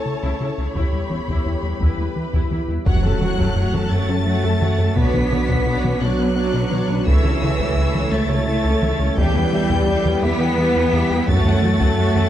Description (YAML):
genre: cinematic, hybrid orchestral and electronic film score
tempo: 57 BPM (dotted quarters)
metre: 6/8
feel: straight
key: unclear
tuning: A4 = 440 Hz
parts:
  - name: warm symphonic violin section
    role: second line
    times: 0.0-12.3 s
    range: F#4 to B5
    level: -29 LUFS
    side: left 2 dB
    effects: none
  - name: rich symphonic viola section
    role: accompaniment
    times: 0.0-12.3 s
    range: F#3 to C#5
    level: -29 LUFS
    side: right 2 dB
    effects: none
  - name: mellow French horn section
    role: sustained chords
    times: 0.0-12.3 s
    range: E3 to G4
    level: -26 LUFS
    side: left 2 dB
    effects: none
  - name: swarming drone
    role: sustained chords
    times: 0.0-12.3 s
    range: B3 to E5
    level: -31 LUFS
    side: right 1 dB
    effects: built-in reverb
  - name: rubbery square bass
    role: riff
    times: 0.1-12.3 s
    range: C#2 to B3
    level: -23 LUFS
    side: left 1 dB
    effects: none
  - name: harp-like synth pluck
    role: arpeggios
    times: 0.2-12.3 s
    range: E3 to B4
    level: -29 LUFS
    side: left 2 dB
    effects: chorus, digital delay
  - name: clear symphonic cello section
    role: bass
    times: 0.2-12.3 s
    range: E2 to B3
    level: -26 LUFS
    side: right 3 dB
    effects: none
  - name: rich symphonic double bass section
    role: bass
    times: 0.4-12.2 s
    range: E1 to F#2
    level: -24 LUFS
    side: right 3 dB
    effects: none
  - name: taiko ensemble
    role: drums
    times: 0.8-12.3 s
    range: none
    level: -23 LUFS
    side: equal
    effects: none
  - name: rich symphonic violin section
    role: melody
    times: 2.9-12.3 s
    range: E6 to B6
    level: -30 LUFS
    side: left 2 dB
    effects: none
  - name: impact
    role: sound effects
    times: 2.9-5.0 s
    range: none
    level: -24 LUFS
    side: equal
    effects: none
room: moderate scoring stage reverb, RT60 1.5 s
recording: dark, warm production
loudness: -16 LUFS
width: side -11 dB against mid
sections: 0.0-2.9 A section; 2.9-12.3 B section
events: impact 2.9-5.0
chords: 0.0 A/C#; 0.8 Em; 2.9 F#m; 5.0 Bmadd9; 7.1 A/C#; 9.2 Em; 11.3 F#m